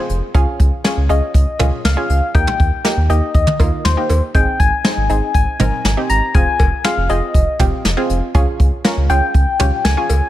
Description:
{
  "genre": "synth-pop",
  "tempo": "120 BPM",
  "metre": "4/4",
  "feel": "straight",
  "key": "unclear",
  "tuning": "A4 = 440 Hz",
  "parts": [
    { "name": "soft struck synth lead", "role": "melody", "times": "0.0-10.3 s", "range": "C5 to Bb5", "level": "-20 LUFS", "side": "left 3 dB", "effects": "chorus, phaser, tape echo" },
    { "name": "analog pluck", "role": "accompaniment", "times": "0.0-10.3 s", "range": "Bb3 to Bb4", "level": "-22 LUFS", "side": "right 1 dB", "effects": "chorus" },
    { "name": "round analog bass", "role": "bass", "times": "0.1-10.2 s", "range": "F1 to Eb2", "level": "-17 LUFS", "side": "equal", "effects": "none" },
    { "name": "jazz brush drum kit", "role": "drums", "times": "0.1-10.2 s", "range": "cowbell, hi-hat, kick drum, snare drum, toms", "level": "-16 LUFS", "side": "equal", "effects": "none" }
  ],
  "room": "little or no reverb",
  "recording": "none",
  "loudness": "-13 LUFS",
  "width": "side -14 dB against mid",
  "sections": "0.0-10.3 A section",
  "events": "none",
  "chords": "0.3 Db; 2.3 Eb; 4.3 Ab; 6.3 Fm7; 8.3 Db"
}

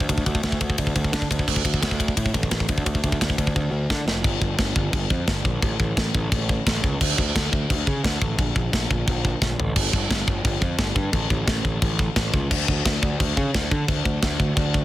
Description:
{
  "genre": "heavy metal",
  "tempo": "174 BPM",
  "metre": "4/4",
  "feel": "straight",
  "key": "D harmonic minor",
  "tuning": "A4 = 440 Hz",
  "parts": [
    { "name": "fuzz picked electric bass", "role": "bass", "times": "0.0-14.8 s", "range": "F1 to D3", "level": "-24 LUFS", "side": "equal", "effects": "overdrive" },
    { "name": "tight metal drum kit", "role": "drums", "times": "0.0-14.8 s", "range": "china cymbal, crash cymbal, kick drum, ride cymbal, snare drum, toms", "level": "-22 LUFS", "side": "equal", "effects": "none" }
  ],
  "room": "little or no reverb",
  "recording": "dense, heavily limited modern master",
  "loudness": "-20 LUFS",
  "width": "side -15 dB against mid",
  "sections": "0.0-4.2 A section; 4.2-14.8 B section",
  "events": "drum fill 3.6-4.2, 9.4-9.8",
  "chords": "none"
}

